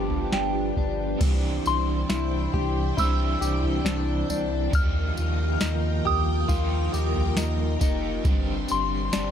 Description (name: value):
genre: dream pop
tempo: 68 BPM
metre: 4/4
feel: straight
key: unclear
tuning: A4 = 440 Hz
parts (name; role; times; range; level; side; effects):
- soft synth bell; melody; 0.0-9.3 s; G5 to F6; -31 LUFS; equal; chorus, phaser, ping-pong delay
- crunchy overdriven guitar; accompaniment; 0.0-9.3 s; C3 to D5; -30 LUFS; right 2 dB; tremolo, wide subtle chorus
- string machine, full ensemble; sustained chords; 0.0-9.3 s; F3 to C6; -32 LUFS; left 1 dB; ensemble chorus
- direct-recorded clean electric guitar; arpeggios; 0.0-9.3 s; D4 to G4; -32 LUFS; left 7 dB; wide subtle chorus, ping-pong delay
- warm sub bass; bass; 0.0-9.3 s; F1 to Eb2; -27 LUFS; equal; none
- soft vintage rhythm box; drums; 0.1-9.3 s; crash cymbal, kick drum, snare drum, tambourine, toms; -27 LUFS; equal; none
room: light reverb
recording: dark, warm production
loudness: -22 LUFS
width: side -8 dB against mid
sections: 0.0-1.2 A section; 1.2-9.3 B section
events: none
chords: 0.0 G7; 1.2 Cadd9; 4.7 Ebadd9; 8.3 Gsus4